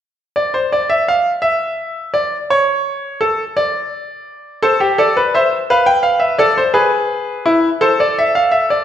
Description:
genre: classical, baroque-style 3-part fugue for grand piano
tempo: 56 BPM (dotted quarters)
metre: 6/8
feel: straight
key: unclear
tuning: A4 = 440 Hz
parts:
  - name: bright grand piano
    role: solo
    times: 0.4-8.8 s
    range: E4 to G5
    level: -13 LUFS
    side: equal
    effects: none
room: wet recital hall reverb, RT60 1.4 s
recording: recorded in a church or concert hall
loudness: -13 LUFS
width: side -10 dB against mid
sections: 0.3-8.8 A section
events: none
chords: 0.3 N.C.; 4.6 Am; 5.7 Bm7b5; 6.7 E/G#; 7.8 Am

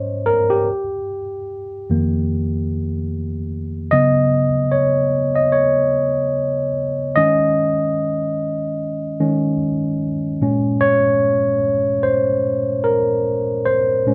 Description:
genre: R&B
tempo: 74 BPM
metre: 4/4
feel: swing 58% on 16ths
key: Bb minor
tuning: A4 = 440 Hz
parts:
  - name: tine electric piano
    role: solo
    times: 0.0-14.1 s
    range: F2 to Eb5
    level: -19 LUFS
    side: equal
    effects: overdrive
room: moderate studio ambience, RT60 0.5 s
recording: band playing live in one room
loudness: -19 LUFS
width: mono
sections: 0.0-10.4 A section; 10.4-14.1 B section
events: tine electric piano solo 0.0-10.4, 10.4-14.1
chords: 0.0 Ab7sus4; 0.7 F9sus4; 3.9 Db9sus4; 7.2 Eb7sus4; 10.4 Bbm9

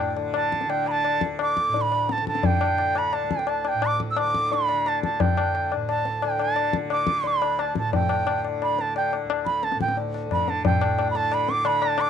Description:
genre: indian classical, Hindustani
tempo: 175 BPM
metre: 4/4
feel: straight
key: unclear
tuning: A4 = 440 Hz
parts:
  - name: bright reedy bansuri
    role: melody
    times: 0.0-12.1 s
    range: G5 to E6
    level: -24 LUFS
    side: right 4 dB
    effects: none
  - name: tanpura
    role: drone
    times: 0.0-12.1 s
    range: D2 to D3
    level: -32 LUFS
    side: right 2 dB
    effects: stereo widening
  - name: tabla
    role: percussion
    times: 0.2-12.1 s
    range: none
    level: -25 LUFS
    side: left 6 dB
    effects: none
room: studio ambience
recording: dry, close 1970s-style studio recording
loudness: -21 LUFS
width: side -8 dB against mid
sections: 0.0-10.6 A section; 10.6-12.1 B section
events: speeding up 0.0-12.1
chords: none

